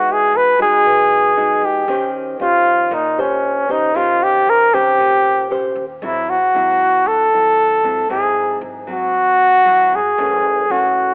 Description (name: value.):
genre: bossa nova.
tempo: 116 BPM.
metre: 4/4.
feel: straight.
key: unclear.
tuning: A4 = 440 Hz.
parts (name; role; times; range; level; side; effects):
warm flugelhorn; melody; 0.0-11.1 s; C#4 to B4; -13 LUFS; equal; none.
nylon-string guitar; accompaniment; 0.0-11.1 s; F#2 to B#4; -23 LUFS; equal; cassette tape.
upright bass; bass; 0.0-11.1 s; F#1 to E2; -39 LUFS; equal; none.
room: moderate spring reverb, RT60 2.5 s.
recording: home recording on cassette, telephone sound.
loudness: -12 LUFS.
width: side -38 dB against mid.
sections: 0.0-11.1 A section.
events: none.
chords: 0.0 Emaj9; 1.9 D#13; 6.0 G#7b9b13; 10.2 F#m7.